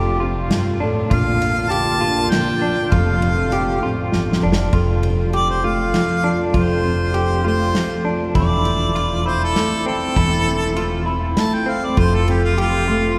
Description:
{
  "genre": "acoustic folk duo or small band",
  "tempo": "100 BPM",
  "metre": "3/4",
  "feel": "straight",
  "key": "F major",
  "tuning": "A4 = 440 Hz",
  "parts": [
    { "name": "fingerpicked steel-string acoustic guitar", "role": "accompaniment", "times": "0.0-13.2 s", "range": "F2 to A4", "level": "-24 LUFS", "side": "equal", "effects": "none" },
    { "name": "dark chamber string section", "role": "sustained chords", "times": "0.0-4.7, 12.0-13.2 s", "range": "C3 to F4", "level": "-33 LUFS", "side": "equal", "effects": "none" },
    { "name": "electric guitar through a small old amp", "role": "arpeggios", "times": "0.0-13.2 s", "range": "C4 to G4", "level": "-26 LUFS", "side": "equal", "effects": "tremolo" },
    { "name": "upright bass", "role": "bass", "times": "0.0-13.1 s", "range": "E1 to Bb1", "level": "-25 LUFS", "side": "equal", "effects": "none" },
    { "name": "loose indie drum kit", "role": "drums", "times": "0.5-12.7 s", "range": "kick drum, ride cymbal, snare drum", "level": "-28 LUFS", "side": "equal", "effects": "none" },
    { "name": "warm harmonica", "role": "melody", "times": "1.1-13.2 s", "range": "F4 to A5", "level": "-25 LUFS", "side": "equal", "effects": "none" }
  ],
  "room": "wet cathedral reverb, RT60 5.8 s",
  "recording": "recorded in a church or concert hall",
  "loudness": "-18 LUFS",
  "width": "mono",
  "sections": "0.0-4.7 A section; 4.7-13.2 B section",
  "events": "drum fill 4.1-4.7; harmonica solo 4.7-13.2",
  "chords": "0.0 F; 1.1 Bb; 2.9 F; 8.4 Am/E; 12.0 F",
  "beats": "0.51 | 1.11 1.72 2.32 | 2.92 3.52 4.13 | 4.73 5.33 5.94 | 6.54 7.15 7.75 | 8.35 8.96 9.56 | 10.16 10.77 11.37 | 11.97 12.58 13.18"
}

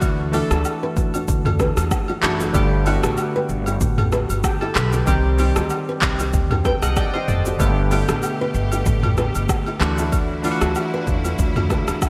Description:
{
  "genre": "afrobeats",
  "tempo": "95 BPM",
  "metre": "4/4",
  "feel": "swing 55% on 16ths",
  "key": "G major",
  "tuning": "A4 = 439 Hz",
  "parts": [
    { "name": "warm analog keys", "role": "accompaniment", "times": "0.0-12.1 s", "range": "D3 to G5", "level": "-26 LUFS", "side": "equal", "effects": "chorus" },
    { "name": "upright bass", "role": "bass", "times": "0.0-12.0 s", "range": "F#1 to E2", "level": "-25 LUFS", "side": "equal", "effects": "none" },
    { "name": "deep house drum kit", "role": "drums", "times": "0.0-12.1 s", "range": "handclaps, hi-hat, kick drum, rim click, shaker, toms", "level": "-24 LUFS", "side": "equal", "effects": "overdrive, gated reverb" },
    { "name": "agogo bells and woodblock", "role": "percussion", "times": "0.0-12.1 s", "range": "none", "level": "-34 LUFS", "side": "equal", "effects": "none" },
    { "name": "nylon-string guitar", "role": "riff", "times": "0.3-11.8 s", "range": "D4 to B4", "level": "-30 LUFS", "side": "equal", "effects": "lush chorus, digital delay" },
    { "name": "bright studio string section", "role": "sustained chords", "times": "7.6-12.1 s", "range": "B2 to G4", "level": "-34 LUFS", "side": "equal", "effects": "none" }
  ],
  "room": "light reverb, small room ambience",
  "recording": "bright 1980s-style digital production",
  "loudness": "-20 LUFS",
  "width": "mono",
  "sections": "0.0-12.1 A section",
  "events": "synth keys fill 6.3-7.6",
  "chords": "0.0 Dadd9; 2.5 Gadd9; 5.1 Cm; 7.6 Gadd9; 9.8 Dadd9",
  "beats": "| 0.02 0.65 1.28 1.91 | 2.54 3.18 3.81 4.44 | 5.07 5.70 6.33 6.97 | 7.60 8.23 8.86 9.49 | 10.12 10.76 11.39 12.02"
}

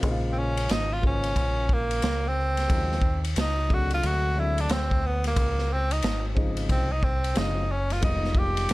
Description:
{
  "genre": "hip hop, jazz-hop",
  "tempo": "90 BPM",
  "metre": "4/4",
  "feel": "swing 62% on 16ths",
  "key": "unclear",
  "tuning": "A4 = 440 Hz",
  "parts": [
    { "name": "dark baby grand piano", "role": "accompaniment", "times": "0.0-8.7 s", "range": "C3 to C5", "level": "-33 LUFS", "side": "left 2 dB", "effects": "none" },
    { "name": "deep dub picked electric bass", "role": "bass", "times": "0.0-8.7 s", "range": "F1 to Eb2", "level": "-27 LUFS", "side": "equal", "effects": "none" },
    { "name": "vintage drum kit", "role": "drums", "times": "0.0-8.7 s", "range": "hi-hat, kick drum, ride cymbal, snare drum", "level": "-28 LUFS", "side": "equal", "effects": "none" },
    { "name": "warm tenor saxophone", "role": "melody", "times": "0.3-8.7 s", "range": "Bb3 to G4", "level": "-28 LUFS", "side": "equal", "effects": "none" }
  ],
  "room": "little or no reverb",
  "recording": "none",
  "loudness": "-23 LUFS",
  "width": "side -19 dB against mid",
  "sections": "0.0-8.7 A section",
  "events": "tenor saxophone solo 0.0-8.7",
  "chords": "0.0 Bbm9; 2.7 Ebm11; 4.0 D7#11; 5.4 Dbmaj9; 8.0 Fm7b5",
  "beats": "| 0.03 0.69 1.36 2.03 | 2.69 3.36 4.03 4.70 | 5.36 6.03 6.70 7.36 | 8.03 8.70"
}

